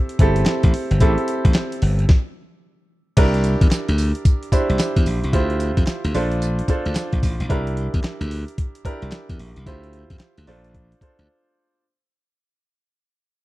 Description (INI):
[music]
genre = R&B, new jack swing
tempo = 111 BPM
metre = 4/4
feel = swing 63% on 16ths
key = unclear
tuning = A4 = 440 Hz
[part]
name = clear baby grand piano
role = accompaniment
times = 0.0-11.8 s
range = C4 to C5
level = -24 LUFS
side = right 2 dB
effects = none
[part]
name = dusty soul sampler-style drum kit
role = drums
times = 0.1-11.3 s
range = crash cymbal, handclaps, hi-hat, kick drum, snare drum, tambourine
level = -18 LUFS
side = equal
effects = none
[part]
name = glassy slap bass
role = bass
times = 0.2-11.3 s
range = G1 to F2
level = -20 LUFS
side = equal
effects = none
[sound]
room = digital ambience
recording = dry, close 1970s-style studio recording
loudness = -17 LUFS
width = side -17 dB against mid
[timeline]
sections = 0.0-3.2 A section; 3.2-11.8 B section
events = stop 2.1-3.2; fade-out 3.2-11.8; break 11.3-11.8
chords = 0.0 Am7; 3.2 C7; 5.3 Dm11; 6.1 Bbmaj7; 7.5 C7; 9.7 Dm11; 10.5 Bbmaj7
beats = 0.47 | 1.01 1.55 2.09 2.63 | 3.17 3.71 4.25 4.79 | 5.33 5.87 6.41 6.95 | 7.49 8.04 8.58 9.12 | 9.66 10.20 10.74 11.28